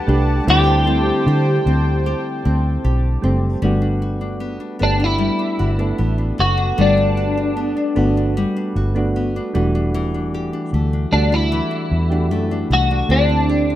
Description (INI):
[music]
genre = indie pop, bedroom pop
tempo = 76 BPM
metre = 4/4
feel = straight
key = G major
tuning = A4 = 440 Hz
[part]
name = twelve-string electric guitar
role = melody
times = 0.0-13.8 s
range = D4 to G4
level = -20 LUFS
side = equal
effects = ensemble chorus, slapback echo
[part]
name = nylon-string guitar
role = accompaniment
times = 0.0-13.8 s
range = D3 to G4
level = -24 LUFS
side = left 4 dB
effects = wide subtle chorus, warbly pitch drift
[part]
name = soft electric-piano-like synth keys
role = accompaniment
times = 0.0-13.8 s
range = G3 to A4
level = -24 LUFS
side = right 2 dB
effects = chorus, cassette tape
[part]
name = warm analog pad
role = sustained chords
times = 0.0-3.6 s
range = B4 to D6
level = -27 LUFS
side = right 1 dB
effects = chorus, tremolo
[part]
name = vintage muted fingered electric bass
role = bass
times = 0.1-13.8 s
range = E1 to D3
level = -18 LUFS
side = equal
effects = none
[sound]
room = light reverb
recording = rough home demo mix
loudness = -16 LUFS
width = side -13 dB against mid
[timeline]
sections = 0.0-3.6 A section; 3.6-13.8 B section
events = none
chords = 0.5 D7sus4; 3.6 Gmaj7; 9.5 Em11; 13.1 D7sus4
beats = | 0.47 1.26 2.05 2.84 | 3.63 4.42 5.21 6.00 | 6.79 7.58 8.37 9.15 | 9.94 10.73 11.52 12.31 | 13.10